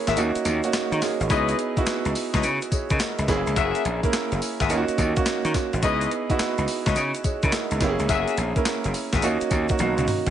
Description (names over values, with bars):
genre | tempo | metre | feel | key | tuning
R&B, new jack swing | 106 BPM | 4/4 | swing 66% on 16ths | C# dorian | A4 = 440 Hz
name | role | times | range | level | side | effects
warm grand piano | accompaniment | 0.0-10.3 s | A#3 to E5 | -25 LUFS | right 4 dB | none
mellow horn section | stabs | 0.1-9.3 s | E4 to E5 | -29 LUFS | left 7 dB | tape echo
gritty slap bass | bass | 0.1-10.3 s | F#1 to D#3 | -26 LUFS | left 1 dB | overdrive
clean 12-bit digital drum machine | drums | 0.1-10.3 s | handclaps, hi-hat, kick drum, snare drum, tambourine, toms | -26 LUFS | left 1 dB | overdrive
tube shaker | percussion | 0.1-10.3 s | none | -42 LUFS | left 8 dB | none
room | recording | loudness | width
light reverb, digital ambience | nothing above 10.6 kHz | -21 LUFS | side -10 dB against mid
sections
0.0-10.3 A section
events
break 0.0-1.3; drum fill 9.8-10.3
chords
0.2 D#m7; 1.3 C#m9; 3.3 F#9; 4.7 D#m7; 5.8 C#m9; 7.8 F#9; 9.2 D#m7; 9.8 Bmaj7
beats
0.17 0.73 | 1.30 1.87 2.43 3.00 | 3.56 4.13 4.70 5.26 | 5.83 6.39 6.96 7.53 | 8.09 8.66 9.22 9.79